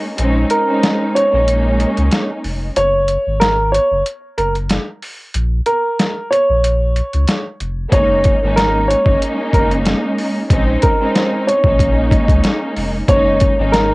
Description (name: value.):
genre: hip hop, boom-bap hip-hop.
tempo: 93 BPM.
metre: 4/4.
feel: swing 56% on 16ths.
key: Bb minor.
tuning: A4 = 440 Hz.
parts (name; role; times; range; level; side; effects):
warm symphonic string section; accompaniment; 0.0-2.7, 7.9-13.9 s; Ab3 to Eb4; -18 LUFS; equal; cassette tape, high-pass filter, low-pass filter.
saturated sub bass; bass; 0.2-13.9 s; F1 to Db2; -18 LUFS; equal; none.
boom bap sampler-style drum kit; drums; 0.2-13.9 s; hi-hat, kick drum, snare drum; -17 LUFS; equal; overdrive, cassette tape.
clear upright piano; melody; 0.5-13.9 s; Bb4 to Db5; -16 LUFS; right 1 dB; high-pass filter, low-pass filter, cassette tape.
room: light reverb.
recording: home recording on cassette.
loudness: -13 LUFS.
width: side -23 dB against mid.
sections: 0.0-13.9 A section.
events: break 0.0-7.9; kick muted 6.6-7.9.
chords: 0.2 Bbm11; 2.8 Gbsus2; 5.3 Bbm; 7.9 Gb69; 10.5 Bbm11; 13.1 Gb69.